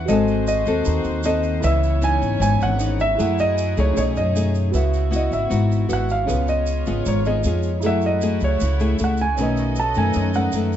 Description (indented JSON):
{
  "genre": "bossa nova",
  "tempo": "155 BPM",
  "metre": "4/4",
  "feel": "straight",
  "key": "C# minor from 4.7 s",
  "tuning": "A4 = 440 Hz",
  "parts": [
    { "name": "warm concert grand piano", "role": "melody", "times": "0.0-10.8 s", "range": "C#5 to A5", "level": "-24 LUFS", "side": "right 2 dB", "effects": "none" },
    { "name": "nylon-string guitar", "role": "accompaniment", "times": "0.0-10.8 s", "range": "F#2 to A4", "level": "-24 LUFS", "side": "left 4 dB", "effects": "none" },
    { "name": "warm grand piano", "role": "accompaniment", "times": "0.0-10.8 s", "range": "C#4 to E6", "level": "-30 LUFS", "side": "right 6 dB", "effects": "none" },
    { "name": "dark studio string section", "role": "sustained chords", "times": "0.0-10.8 s", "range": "A3 to D#5", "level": "-30 LUFS", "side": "left 2 dB", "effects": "none" },
    { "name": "upright bass", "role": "bass", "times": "0.0-10.8 s", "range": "G#1 to F#2", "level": "-22 LUFS", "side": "equal", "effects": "none" },
    { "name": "tube shaker", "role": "percussion", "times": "0.1-10.8 s", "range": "none", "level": "-39 LUFS", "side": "right 7 dB", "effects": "none" }
  ],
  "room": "light reverb",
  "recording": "dark, warm production, nothing above 7.7 kHz",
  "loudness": "-18 LUFS",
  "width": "side -10 dB against mid",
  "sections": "0.0-4.7 A section; 4.7-10.8 B section",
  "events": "grand piano solo 4.7-10.8",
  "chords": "0.1 G#7b9; 1.6 C#m9; 3.2 F#m9; 4.0 B13; 4.7 C#m7; 6.3 C#7; 7.8 F#m9; 9.4 B9"
}